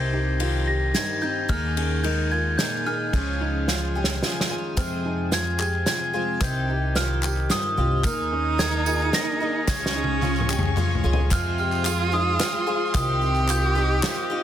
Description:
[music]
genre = indie folk with a building arrangement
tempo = 110 BPM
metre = 3/4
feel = straight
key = F minor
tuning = A4 = 441 Hz
[part]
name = glockenspiel with rubber mallets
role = melody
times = 0.0-14.3 s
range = Eb6 to Bb6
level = -27 LUFS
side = equal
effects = none
[part]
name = fingerpicked steel-string acoustic guitar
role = accompaniment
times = 0.0-9.7 s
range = F2 to Ab4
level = -34 LUFS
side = left 1 dB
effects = none
[part]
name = picked twelve-string acoustic guitar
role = accompaniment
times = 0.0-14.4 s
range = F2 to Ab4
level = -31 LUFS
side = left 6 dB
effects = wide subtle chorus
[part]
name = warm upright piano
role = arpeggios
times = 0.0-14.4 s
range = Bb3 to G4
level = -32 LUFS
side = right 4 dB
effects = none
[part]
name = upright bass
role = bass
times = 0.0-14.0 s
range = C2 to F2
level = -26 LUFS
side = equal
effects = none
[part]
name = unplugged drum kit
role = drums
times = 0.4-14.2 s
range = hi-hat, kick drum, ride cymbal, snare drum, toms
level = -26 LUFS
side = equal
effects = none
[part]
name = group handclap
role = percussion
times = 4.8-14.2 s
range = none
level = -33 LUFS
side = left 6 dB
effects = none
[part]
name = tambourine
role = percussion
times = 4.8-14.2 s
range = none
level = -38 LUFS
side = right 11 dB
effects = none
[part]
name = rich cello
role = second line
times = 8.0-14.4 s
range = Db4 to G4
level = -29 LUFS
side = right 7 dB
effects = none
[part]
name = dark chamber string section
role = sustained chords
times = 8.1-14.4 s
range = G4 to Db6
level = -36 LUFS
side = left 2 dB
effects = none
[sound]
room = studio reverb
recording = dense, heavily limited modern master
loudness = -21 LUFS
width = side -10 dB against mid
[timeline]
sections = 0.0-4.8 A section; 4.8-11.3 B section; 11.3-14.4 C section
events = drum fill 3.7-4.8, 9.7-11.3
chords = 0.0 Cm; 1.5 Ebsus4; 3.1 Db; 4.8 Fm; 6.4 Cm; 8.0 Ebsus4; 9.7 Db; 11.3 Fm; 12.9 Cm

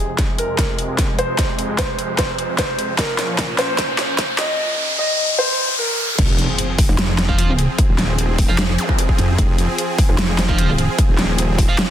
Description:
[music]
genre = heavy wobble dubstep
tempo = 150 BPM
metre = 4/4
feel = half-time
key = F minor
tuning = A4 = 439 Hz
[part]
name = warm concert grand piano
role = melody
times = 0.0-6.1 s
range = Ab4 to Eb5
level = -22 LUFS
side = equal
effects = low-pass filter, digital delay
[part]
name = supersaw pad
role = sustained chords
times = 0.0-11.9 s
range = F2 to Ab4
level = -25 LUFS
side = right 1 dB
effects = sidechain pumping, low-pass filter
[part]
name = riser, impact and zap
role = sound effects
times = 1.0-8.9 s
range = none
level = -23 LUFS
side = equal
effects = none
[part]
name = dubstep drum kit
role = drums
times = 0.2-11.9 s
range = crash cymbal, hi-hat, snare drum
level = -22 LUFS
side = equal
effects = high-pass filter on snare, studio reverb, high-pass filter on hats, high-pass filter on cymbals
[part]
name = electronic kick drum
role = drums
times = 0.2-11.7 s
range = none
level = -18 LUFS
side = equal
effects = studio reverb
[part]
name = wobble bass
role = bass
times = 6.2-11.7 s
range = Eb1 to F2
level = -19 LUFS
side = equal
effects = chorus, overdrive
[part]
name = pulsing pluck wobble bass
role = bass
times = 6.9-10.9 s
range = F1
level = -18 LUFS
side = equal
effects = chorus, overdrive
[part]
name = distorted electric guitar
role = stabs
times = 7.3-11.8 s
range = F4 to F5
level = -26 LUFS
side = right 5 dB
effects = overdrive, vintage 12-bit sampler grit, digital delay
[sound]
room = light reverb, digital ambience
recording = dense, heavily limited modern master, high-pass filter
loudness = -16 LUFS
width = side -10 dB against mid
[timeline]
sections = 0.0-6.2 A section; 6.2-11.9 B section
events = build-up 0.0-6.2; drum fill 0.0-4.6; filter sweep on supersaw synth 0.0-6.2; filter sweep 0.0-6.2; riser 1.0-6.2; drop 6.2-11.9; impact 6.2-7.8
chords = 0.0 Fm; 3.0 Bbm; 6.2 Fm

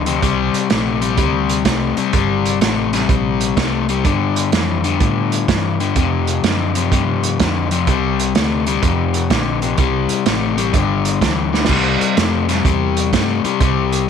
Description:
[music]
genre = electric blues shuffle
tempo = 126 BPM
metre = 4/4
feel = swing 66% on 8ths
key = C mixolydian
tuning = A4 = 440 Hz
[part]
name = overdriven semi-hollow guitar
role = riff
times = 0.0-14.1 s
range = F2 to A3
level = -17 LUFS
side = left 10 dB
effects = none
[part]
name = vintage muted fingered electric bass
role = bass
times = 0.0-14.1 s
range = G1 to A2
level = -22 LUFS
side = right 2 dB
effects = none
[part]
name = vintage drum kit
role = drums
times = 0.1-14.0 s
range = crash cymbal, hi-hat, kick drum, snare drum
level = -19 LUFS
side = right 5 dB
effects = none
[sound]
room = light reverb, small room reverb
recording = 1960s-style stereo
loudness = -14 LUFS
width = side -7 dB against mid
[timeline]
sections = 0.0-11.7 A section; 11.7-14.1 B section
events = drum fill 11.5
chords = 0.2 Csus2; 4.1 Gsus2; 6.0 Fsus2; 7.9 Csus2; 8.8 F5; 9.8 C5; 10.7 G5; 11.7 C

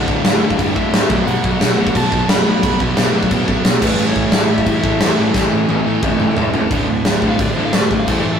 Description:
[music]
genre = punk rock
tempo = 176 BPM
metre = 4/4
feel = straight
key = D major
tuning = A4 = 437 Hz
[part]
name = crunchy overdriven guitar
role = melody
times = 0.0-8.4 s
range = A4 to B5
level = -26 LUFS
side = right 1 dB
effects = digital delay
[part]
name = crunchy overdriven guitar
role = riff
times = 0.0-8.4 s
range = D2 to B3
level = -22 LUFS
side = left 7 dB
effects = none
[part]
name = overdriven semi-hollow guitar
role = riff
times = 0.0-8.4 s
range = D2 to B3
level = -22 LUFS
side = right 5 dB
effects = none
[part]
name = tight distorted guitar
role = riff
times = 0.0-8.4 s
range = D2 to B3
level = -24 LUFS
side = right 1 dB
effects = distortion
[part]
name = fuzz picked electric bass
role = bass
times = 0.1-8.4 s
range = D1 to A2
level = -24 LUFS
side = equal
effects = overdrive
[part]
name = big rock drum kit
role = drums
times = 0.1-8.2 s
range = crash cymbal, kick drum, snare drum, toms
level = -16 LUFS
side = equal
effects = none
[sound]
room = light reverb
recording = rough rehearsal-room recording, tube saturation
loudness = -13 LUFS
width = side -7 dB against mid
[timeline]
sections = 0.0-6.7 A section; 6.7-8.4 B section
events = drum fill 5.3-6.7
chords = 0.0 D; 1.1 B5; 3.8 A5; 6.7 D5

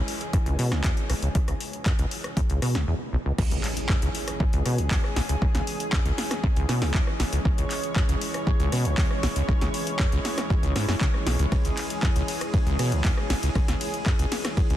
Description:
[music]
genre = acid house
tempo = 118 BPM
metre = 4/4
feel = straight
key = C# minor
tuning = A4 = 442 Hz
[part]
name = lush unison pad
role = sustained chords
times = 0.0-14.8 s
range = E3 to C#5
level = -32 LUFS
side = equal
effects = chorus, sidechain pumping
[part]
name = acid bass, saw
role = riff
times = 0.0-14.8 s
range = B1 to C#3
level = -27 LUFS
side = equal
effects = overdrive, wide subtle chorus, sidechain pumping
[part]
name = punchy analog drum machine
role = drums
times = 0.1-14.8 s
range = crash cymbal, handclaps, hi-hat, ride cymbal, rim click, snare drum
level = -31 LUFS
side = left 1 dB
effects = overdrive
[part]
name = electronic kick drum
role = drums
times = 0.3-14.7 s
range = none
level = -24 LUFS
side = equal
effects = overdrive
[part]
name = impact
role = sound effects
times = 3.4-5.4 s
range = none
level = -34 LUFS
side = equal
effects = none
[sound]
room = light reverb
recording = dense, heavily limited modern master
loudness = -22 LUFS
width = side -12 dB against mid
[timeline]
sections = 0.0-3.4 A section; 3.4-14.8 B section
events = break 2.9-3.4; drop 3.4-14.8; impact 3.4-5.4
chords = 0.0 C#m

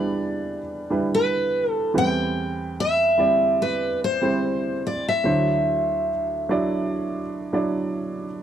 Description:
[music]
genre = acoustic folk-pop ballad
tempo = 72 BPM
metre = 4/4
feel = straight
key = unclear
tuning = A4 = 445 Hz
[part]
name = picked steel-string acoustic guitar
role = melody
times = 0.0-7.7 s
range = B4 to G5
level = -22 LUFS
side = equal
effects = none
[part]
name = warm upright piano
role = accompaniment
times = 0.0-8.4 s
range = D2 to D5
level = -24 LUFS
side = right 2 dB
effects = none
[sound]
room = light reverb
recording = dry, close 1970s-style studio recording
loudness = -20 LUFS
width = side -10 dB against mid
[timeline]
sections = 0.0-8.4 A section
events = none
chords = 0.0 Em7; 1.9 Cmaj7/E; 5.3 D9

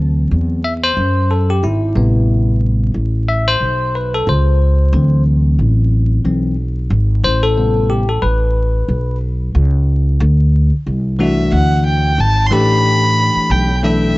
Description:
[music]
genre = hip hop, jazz-hop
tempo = 91 BPM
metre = 4/4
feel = swing 58% on 16ths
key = A dorian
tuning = A4 = 440 Hz
[part]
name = bell-like tine electric piano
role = accompaniment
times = 0.0-14.2 s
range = C3 to E5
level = -17 LUFS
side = left 2 dB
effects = phaser
[part]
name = upright bass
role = bass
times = 0.0-14.2 s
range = G#1 to F#2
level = -14 LUFS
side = equal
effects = none
[part]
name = dark violin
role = melody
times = 11.2-14.2 s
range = E5 to C6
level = -16 LUFS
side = equal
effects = tape echo
[sound]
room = small room ambience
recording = echo-heavy mix, vinyl crackle, nothing above 7.7 kHz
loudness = -12 LUFS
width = side -20 dB against mid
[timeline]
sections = 0.0-10.2 A section; 10.2-14.2 B section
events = tine electric piano solo 0.0-10.2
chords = 0.0 D9; 2.0 Am9; 4.9 D9; 7.2 Am9; 10.2 D9; 12.5 Asus2

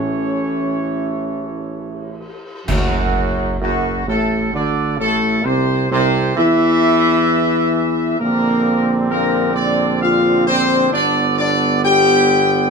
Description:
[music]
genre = classical, ceremonial fanfare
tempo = 65 BPM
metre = 3/4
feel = straight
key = D mixolydian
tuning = A4 = 440 Hz
[part]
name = mellow trumpet section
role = melody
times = 0.0-12.7 s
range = F#4 to G5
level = -20 LUFS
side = left 2 dB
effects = none
[part]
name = bright trombone section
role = sustained chords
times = 0.0-12.7 s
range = F#2 to C4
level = -21 LUFS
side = right 4 dB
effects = none
[part]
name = mellow French horn section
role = sustained chords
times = 0.0-12.7 s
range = F#3 to G4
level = -19 LUFS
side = left 3 dB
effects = none
[part]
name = mellow tuba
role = bass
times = 0.0-12.7 s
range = F#1 to E2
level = -22 LUFS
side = right 4 dB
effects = none
[part]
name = timpani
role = percussion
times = 0.0-4.0 s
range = A2 to D3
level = -28 LUFS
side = right 1 dB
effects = none
[part]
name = clash cymbals and concert bass drum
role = percussion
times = 2.7-4.5 s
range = none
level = -26 LUFS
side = equal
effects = none
[sound]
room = light reverb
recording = minimal, uncompressed stereo recording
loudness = -14 LUFS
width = side -5 dB against mid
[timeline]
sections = 0.0-2.7 A section; 2.7-12.7 B section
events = band accent 2.7-3.6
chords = 0.0 A; 2.7 D/F#; 5.5 C; 8.2 Bbadd9; 10.9 G

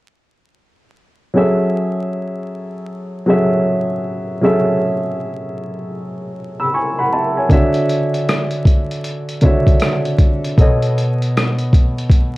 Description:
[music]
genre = lo-fi hip hop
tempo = 78 BPM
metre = 4/4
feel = swing 63% on 16ths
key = F# minor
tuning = A4 = 436 Hz
[part]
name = dark upright piano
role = accompaniment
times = 1.3-12.4 s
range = B2 to E6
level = -16 LUFS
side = equal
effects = low-pass filter
[part]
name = boom bap sampler-style drum kit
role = drums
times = 7.5-12.3 s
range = hi-hat, kick drum, rim click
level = -14 LUFS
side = equal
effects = none
[sound]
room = moderate small room reverb, RT60 0.5 s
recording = worn, warbling old tape, cassette tape, vinyl crackle, warbly pitch drift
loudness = -14 LUFS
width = side -19 dB against mid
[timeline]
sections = 1.4-12.4 A section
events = none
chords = 1.4 F#m9; 7.5 Dmaj7; 10.6 B9

